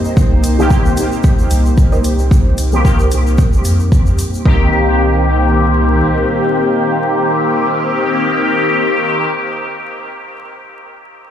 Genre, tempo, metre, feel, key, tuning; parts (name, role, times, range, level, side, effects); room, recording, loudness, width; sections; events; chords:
dub techno; 112 BPM; 4/4; swing 55% on 16ths; C minor; A4 = 441 Hz
dark analog pad; sustained chords; 0.0-9.3 s; Bb3 to C5; -20 LUFS; equal; chorus, sidechain pumping
egg shaker; percussion; 0.0-4.4 s; -31 LUFS; left 3 dB
soft dub sub bass; bass; 0.2-6.0 s; C2 to F2; -14 LUFS; equal; tube saturation, sidechain pumping
electronic kick drum; drums; 0.2-4.6 s; -12 LUFS; equal; studio reverb
electronic hi-hat; drums; 0.4-4.3 s; -28 LUFS; right 1 dB; studio reverb
resonant sweep polysynth; stabs; 0.6-9.3 s; Eb3 to G4; -16 LUFS; left 1 dB; chorus, phaser, cassette tape, sidechain pumping, dub echo
filtered dub chord stab; riff; 1.9-9.3 s; G4 to Eb5; -29 LUFS; right 2 dB
light reverb, digital ambience; played on a big sound system in a bare room, large studio reverb, vinyl crackle; -11 LUFS; side -10 dB against mid
0.0-4.5 A section; 4.5-8.7 B section
filter sweep on analog polysynth 0.0-4.5; filter sweep on synth stab 0.0-4.5
0.0 Cm7